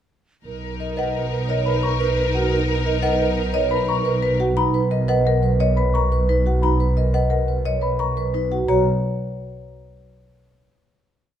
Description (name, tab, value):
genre	classical, minimalist pattern music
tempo	175 BPM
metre	6/4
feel	straight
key	B major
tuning	A4 = 444 Hz
part	mellow hollow wooden-headed alto flute	second line	0.5-4.3 s	A#4	-29 LUFS	right 6 dB	none
part	clear studio string section	sustained chords	0.5-4.4 s	D#4 to A#4	-27 LUFS	left 2 dB	none
part	clear studio double bass section	bass	0.5-8.8 s	B1	-22 LUFS	right 1 dB	none
part	marimba with medium hard mallets	melody	0.8-8.8 s	A#4 to A#5	-25 LUFS	left 7 dB	none
part	vibraphone with soft mallets	arpeggios	0.8-8.8 s	D#4 to C#5	-24 LUFS	right 6 dB	none
part	celesta	arpeggios	1.0-8.8 s	D#5 to C#6	-28 LUFS	left 4 dB	none
room	moderate recital hall reverb, RT60 1.6 s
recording	close, detailed microphones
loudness	-18 LUFS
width	side -10 dB against mid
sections	0.5-8.7 A section; 8.7-10.7 final chord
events	none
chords	0.5 Bmaj7; 8.7 B5